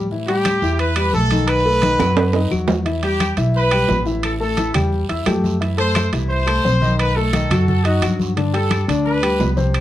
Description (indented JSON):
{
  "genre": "latin, salsa",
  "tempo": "174 BPM",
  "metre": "4/4",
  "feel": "straight",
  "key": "E minor",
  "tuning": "A4 = 440 Hz",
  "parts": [
    { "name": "dark concert grand piano", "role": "accompaniment", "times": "0.0-9.8 s", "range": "C3 to E6", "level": "-21 LUFS", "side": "left 3 dB", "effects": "none" },
    { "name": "upright bass", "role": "bass", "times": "0.0-9.8 s", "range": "A1 to A2", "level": "-20 LUFS", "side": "right 1 dB", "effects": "none" },
    { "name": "congas", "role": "percussion", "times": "0.1-9.8 s", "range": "none", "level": "-25 LUFS", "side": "left 1 dB", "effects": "none" },
    { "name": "guiro", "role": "percussion", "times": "0.1-9.8 s", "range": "none", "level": "-36 LUFS", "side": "right 7 dB", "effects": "none" },
    { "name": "bright trumpet section", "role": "melody", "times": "0.3-9.5 s", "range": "F#4 to C5", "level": "-20 LUFS", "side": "equal", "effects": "none" },
    { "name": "timbales", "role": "percussion", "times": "0.3-9.8 s", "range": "none", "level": "-24 LUFS", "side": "right 5 dB", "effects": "none" },
    { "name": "claves", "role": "percussion", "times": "0.4-9.8 s", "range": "none", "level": "-33 LUFS", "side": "left 4 dB", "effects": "none" }
  ],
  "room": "light reverb",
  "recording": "worn, warbling old tape, cassette tape, warbly pitch drift",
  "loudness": "-15 LUFS",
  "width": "side -13 dB against mid",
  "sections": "0.0-2.9 A section; 2.9-9.8 A section",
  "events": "drum fill 2.0-2.9",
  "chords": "0.1 A5; 1.5 B7; 2.9 Em; 4.2 A5; 5.6 F#m7b5; 7.0 B7; 8.4 Gadd9"
}